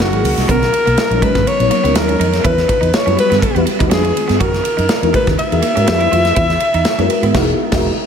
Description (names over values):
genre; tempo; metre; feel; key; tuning
polished 1980s jazz-funk pop; 122 BPM; 4/4; swing 54% on 16ths; unclear; A4 = 444 Hz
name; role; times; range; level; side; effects
breathy alto saxophone; melody; 0.0-7.8 s; F#4 to E5; -17 LUFS; left 2 dB; diffuse ambient delay
FM electric piano with soft pad layer; accompaniment; 0.0-7.9 s; F#3 to C#5; -19 LUFS; left 2 dB; tremolo, ensemble chorus
vintage muted fingered electric bass; bass; 0.0-7.9 s; E1 to G#2; -18 LUFS; right 1 dB; none
modern studio drum kit; drums; 0.0-7.9 s; crash cymbal, hi-hat, kick drum, ride cymbal, snare drum; -18 LUFS; right 1 dB; none
congas; percussion; 0.1-7.3 s; none; -29 LUFS; right 4 dB; none
electric guitar at the edge of break-up; riff; 0.5-7.3 s; G#3 to F#4; -23 LUFS; right 3 dB; wide subtle chorus
room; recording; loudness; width
moderate lush hall reverb, RT60 1.8 s, small room ambience; dreamy mix soaked in reverb; -12 LUFS; side -7 dB against mid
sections
0.0-8.1 A section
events
band accent 7.3-8.1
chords
0.0 F#9; 0.5 Bmaj9; 2.5 Emadd9; 3.9 Fdim7; 4.4 F#13; 5.9 Fmaj9#11; 6.4 Emaj9#11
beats
0.00 | 0.49 0.98 1.47 1.96 | 2.45 2.94 3.43 3.92 | 4.41 4.90 5.39 5.88 | 6.37 6.86 7.35 7.84